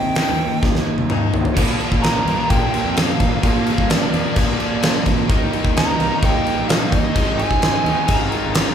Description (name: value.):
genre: classic rock.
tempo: 129 BPM.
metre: 4/4.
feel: straight.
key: unclear.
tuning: A4 = 441 Hz.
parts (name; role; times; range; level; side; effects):
dark smooth lead guitar; melody; 0.0-8.3 s; D5 to Bb5; -23 LUFS; right 2 dB; overdrive.
distorted electric guitar; riff; 0.0-8.7 s; Ab2 to Eb4; -26 LUFS; left 7 dB; overdrive.
overdriven electric guitar; riff; 0.0-8.7 s; Ab2 to Eb4; -25 LUFS; right 7 dB; none.
fuzz fingered electric bass; bass; 0.0-8.6 s; F1 to Eb3; -26 LUFS; left 1 dB; overdrive.
huge arena drum kit; drums; 0.2-8.7 s; crash cymbal, hi-hat, kick drum, snare drum, toms; -18 LUFS; equal; none.
overdriven electric guitar; riff; 1.6-8.7 s; Ab2 to Eb4; -28 LUFS; left 1 dB; none.
crunchy overdriven guitar; second line; 8.1-8.7 s; F4 to Bb4; -26 LUFS; left 4 dB; none.
room: moderate large studio reverb, RT60 0.8 s.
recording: band playing live in one room.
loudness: -15 LUFS.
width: side -8 dB against mid.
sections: 0.0-1.6 A section; 1.6-8.7 B section.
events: drum fill 0.6-1.6.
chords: 0.0 Eb; 1.6 Bb; 5.3 Eb; 7.2 Ab.